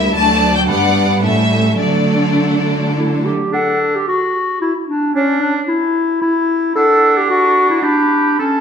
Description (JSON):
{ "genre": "quick classical-period movement for symphony orchestra", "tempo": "103-113 BPM", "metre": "3/4", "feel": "straight", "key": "D major", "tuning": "A4 = 440 Hz", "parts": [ { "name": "rich symphonic violin section", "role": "melody", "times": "0.0-2.9 s", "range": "D5 to A5", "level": "-17 LUFS", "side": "left 3 dB", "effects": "none" }, { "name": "clear chamber violin section", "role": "second line", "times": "0.0-3.3 s", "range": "C#4 to D5", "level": "-21 LUFS", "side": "left 2 dB", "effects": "none" }, { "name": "rich chamber viola section", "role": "accompaniment", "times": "0.0-3.3 s", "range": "F#3 to B3", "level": "-19 LUFS", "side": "right 2 dB", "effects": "none" }, { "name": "clear studio cello section", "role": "bass", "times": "0.0-3.3 s", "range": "D2 to D3", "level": "-18 LUFS", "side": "right 1 dB", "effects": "none" }, { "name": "warm clarinet", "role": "second line", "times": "3.0-8.6 s", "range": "C#4 to A4", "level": "-14 LUFS", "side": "left 1 dB", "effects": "none" }, { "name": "clear oboe", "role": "second line", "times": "3.5-8.6 s", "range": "D4 to A4", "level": "-20 LUFS", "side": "right 3 dB", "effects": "none" }, { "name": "silver concert flute", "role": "second line", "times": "3.5-8.6 s", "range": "C#5 to B5", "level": "-22 LUFS", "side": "equal", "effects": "none" } ], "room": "wet recital hall reverb, RT60 1.6 s", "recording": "none", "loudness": "-12 LUFS", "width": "side -7 dB against mid", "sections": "0.0-3.5 A section; 3.5-8.6 A section", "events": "none", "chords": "0.2 D; 0.7 G; 1.2 A7; 1.8 D; 5.2 C#m; 6.8 D; 7.8 G/D" }